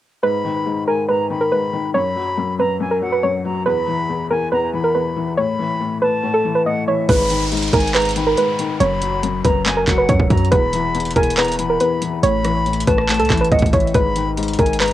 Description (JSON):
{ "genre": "hip hop, trap", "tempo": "140 BPM", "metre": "4/4", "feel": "half-time", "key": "G# minor", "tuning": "A4 = 440 Hz", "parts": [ { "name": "soft round pluck", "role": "melody", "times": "0.2-14.9 s", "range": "A4 to D#5", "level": "-19 LUFS", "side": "right 1 dB", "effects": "chorus, low-pass filter, cassette tape" }, { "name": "silver concert flute", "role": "second line", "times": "0.2-14.9 s", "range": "E5 to B5", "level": "-25 LUFS", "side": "left 1 dB", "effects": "cassette tape, analog delay" }, { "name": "felt-muted upright piano", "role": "accompaniment", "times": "0.2-14.9 s", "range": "E2 to F#3", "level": "-22 LUFS", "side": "left 6 dB", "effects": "low-pass filter, cassette tape" }, { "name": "warm 808-style bass", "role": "bass", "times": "7.1-14.9 s", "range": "E1 to F#2", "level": "-22 LUFS", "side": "right 1 dB", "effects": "none" }, { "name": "trap drum kit", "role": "drums", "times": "7.1-14.9 s", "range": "handclaps, hi-hat, kick drum, rim click", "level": "-20 LUFS", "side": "right 1 dB", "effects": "vintage 12-bit sampler grit" }, { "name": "downlifter", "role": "sound effects", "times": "7.1-10.5 s", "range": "none", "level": "-28 LUFS", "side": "right 1 dB", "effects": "none" } ], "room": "little or no reverb", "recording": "home recording on cassette", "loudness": "-15 LUFS", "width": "side -13 dB against mid", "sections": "0.2-7.1 A section; 7.1-14.9 B section", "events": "none", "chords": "0.2 G#m; 1.9 N.C.; 5.4 Aadd9; 7.1 G#m; 8.8 F#sus4; 10.5 E5; 12.2 Aadd9; 13.9 G#m", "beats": "| 0.23 0.66 1.09 1.52 | 1.95 2.38 2.80 3.23 | 3.66 4.09 4.52 4.95 | 5.38 5.80 6.23 6.66 | 7.09 7.52 7.95 8.38 | 8.80 9.23 9.66 10.09 | 10.52 10.95 11.38 11.80 | 12.23 12.66 13.09 13.52 | 13.95 14.38 14.80" }